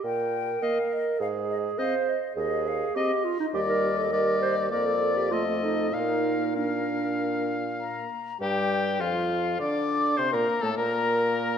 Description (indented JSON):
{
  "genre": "quick classical-period movement for wind quintet",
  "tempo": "101 BPM",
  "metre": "4/4",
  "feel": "straight",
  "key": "Bb major from 3.5 s",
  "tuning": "A4 = 440 Hz",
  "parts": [
    { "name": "silver concert flute", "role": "melody", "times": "0.0-11.6 s", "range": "A4 to D6", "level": "-31 LUFS", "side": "left 7 dB", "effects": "none" },
    { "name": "mellow clarinet", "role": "accompaniment", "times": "0.0-11.6 s", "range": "D4 to D5", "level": "-29 LUFS", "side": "right 6 dB", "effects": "none" },
    { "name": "mellow bassoon", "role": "bass", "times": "0.0-11.6 s", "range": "Eb2 to D3", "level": "-32 LUFS", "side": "right 1 dB", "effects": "none" },
    { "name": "bright oboe", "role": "second line", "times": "0.6-11.6 s", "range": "F4 to F5", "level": "-30 LUFS", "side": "left 4 dB", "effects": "none" },
    { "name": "warm French horn", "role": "accompaniment", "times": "0.6-11.6 s", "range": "F3 to D4", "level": "-32 LUFS", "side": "left 1 dB", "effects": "none" }
  ],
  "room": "wet scoring stage reverb, RT60 1.9 s",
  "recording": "none",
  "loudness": "-24 LUFS",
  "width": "side -8 dB against mid",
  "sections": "0.0-8.4 A section; 8.4-11.6 B section",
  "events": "none",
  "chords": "0.0 Eb; 1.2 Ab; 3.5 Ebmaj7; 4.7 Bb/F; 5.3 F7; 5.9 Bb; 10.8 N.C."
}